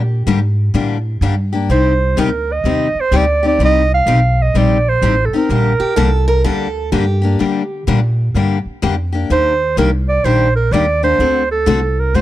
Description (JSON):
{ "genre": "acoustic string swing (jazz manouche)", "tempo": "126 BPM", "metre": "4/4", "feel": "swing 64% on 8ths", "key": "G minor", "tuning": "A4 = 439 Hz", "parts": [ { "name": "picked steel-string acoustic guitar", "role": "second line", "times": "0.0-0.2, 5.8-7.8 s", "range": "G4 to Bb4", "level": "-22 LUFS", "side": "right 2 dB", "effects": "none" }, { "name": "upright bass", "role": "bass", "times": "0.0-12.2 s", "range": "A1 to D3", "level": "-16 LUFS", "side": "equal", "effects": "none" }, { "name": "picked steel-string acoustic guitar", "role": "accompaniment", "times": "0.3-12.2 s", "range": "C3 to A4", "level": "-18 LUFS", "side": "left 6 dB", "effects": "none" }, { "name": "warm clarinet", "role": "melody", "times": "1.7-6.3, 9.3-12.2 s", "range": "A4 to F5", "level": "-16 LUFS", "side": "right 4 dB", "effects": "none" } ], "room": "small room ambience", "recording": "dry, close 1970s-style studio recording", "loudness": "-12 LUFS", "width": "side -14 dB against mid", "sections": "0.0-12.2 A section", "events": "none", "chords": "0.0 Gm; 1.7 Cm; 5.5 Gm; 9.3 Ebmaj7; 11.2 D7" }